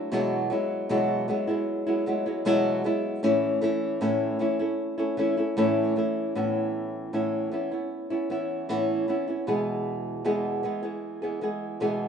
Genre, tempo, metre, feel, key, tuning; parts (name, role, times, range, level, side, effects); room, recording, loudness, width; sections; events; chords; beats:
pop; 77 BPM; 4/4; straight; A major; A4 = 442 Hz
flamenco guitar; solo; 0.0-12.1 s; E2 to G#4; -24 LUFS; equal
light reverb, studio reverb; rough home demo mix, nothing above 10.3 kHz; -24 LUFS; side -7 dB against mid
0.0-6.4 A section; 6.4-12.1 B section
0.1 Eadd9; 3.2 A; 6.4 Aadd9; 9.5 E
| 0.12 0.90 1.68 2.46 | 3.23 4.01 4.79 5.57 | 6.35 7.13 7.91 8.69 | 9.47 10.25 11.03 11.81